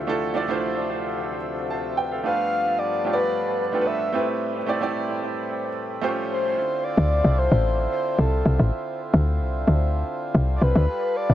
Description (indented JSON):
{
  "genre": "amapiano",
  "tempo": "111 BPM",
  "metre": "4/4",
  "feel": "straight",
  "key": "D dorian",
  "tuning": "A4 = 441 Hz",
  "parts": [
    { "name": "clear baby grand piano", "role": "accompaniment", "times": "0.0-6.6 s", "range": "A3 to A5", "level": "-26 LUFS", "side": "right 4 dB", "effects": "dub echo" },
    { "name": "pedal harmonium", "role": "sustained chords", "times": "0.0-11.3 s", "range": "D2 to E5", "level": "-30 LUFS", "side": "left 2 dB", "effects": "none" },
    { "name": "breathy flute-like synth lead", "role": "melody", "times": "2.2-11.3 s", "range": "A4 to F5", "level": "-26 LUFS", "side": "equal", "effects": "chorus, dub echo" },
    { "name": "woody log drum bass", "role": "bass", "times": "7.0-11.3 s", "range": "G1 to D2", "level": "-19 LUFS", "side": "left 1 dB", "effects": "none" }
  ],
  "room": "light reverb, small room ambience",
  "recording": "echo-heavy mix",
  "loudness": "-21 LUFS",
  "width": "side -12 dB against mid",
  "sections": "0.0-6.6 A section; 6.6-11.3 B section",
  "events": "drop 6.6-11.3",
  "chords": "0.0 Dm9; 2.2 G9; 4.1 Am9; 6.0 A7alt; 6.6 Dm9",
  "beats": "| 0.08 0.62 1.16 1.70 | 2.24 2.78 3.32 3.86 | 4.40 4.94 5.48 6.02 | 6.56 7.11 7.64 8.19 | 8.73 9.27 9.81 10.35 | 10.89"
}